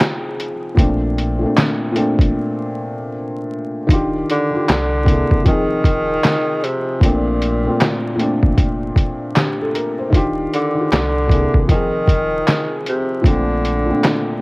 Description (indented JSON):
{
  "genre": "lo-fi hip hop",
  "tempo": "77 BPM",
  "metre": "4/4",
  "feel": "swing 63% on 16ths",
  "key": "Bb major",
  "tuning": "A4 = 441 Hz",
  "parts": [
    { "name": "felt-muted upright piano", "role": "accompaniment", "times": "0.0-14.4 s", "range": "Bb2 to C5", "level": "-20 LUFS", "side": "equal", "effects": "cassette tape, low-pass filter" },
    { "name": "lo-fi sampler-style drum kit", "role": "drums", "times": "0.0-14.3 s", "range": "handclaps, hi-hat, kick drum, snare drum", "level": "-16 LUFS", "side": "equal", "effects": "cassette tape" },
    { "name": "warm sub bass", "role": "bass", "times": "0.8-13.9 s", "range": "Eb1 to C2", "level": "-24 LUFS", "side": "equal", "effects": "none" },
    { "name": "breathy tenor saxophone", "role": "melody", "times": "4.3-14.4 s", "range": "Bb2 to Eb3", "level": "-20 LUFS", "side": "equal", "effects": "low-pass filter, cassette tape" }
  ],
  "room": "light reverb",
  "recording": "home recording on cassette, vinyl crackle",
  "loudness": "-15 LUFS",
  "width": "side -25 dB against mid",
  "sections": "0.0-3.9 A section; 3.9-14.4 B section",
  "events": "break 2.3-3.9",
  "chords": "0.0 Fm7; 0.8 Bbmaj9; 3.9 Ebmaj9; 4.7 C7b13; 5.5 Fm7; 7.0 Bbmaj9; 10.1 Ebmaj9; 10.9 C7b13; 11.7 Fm7; 13.2 Bbmaj9"
}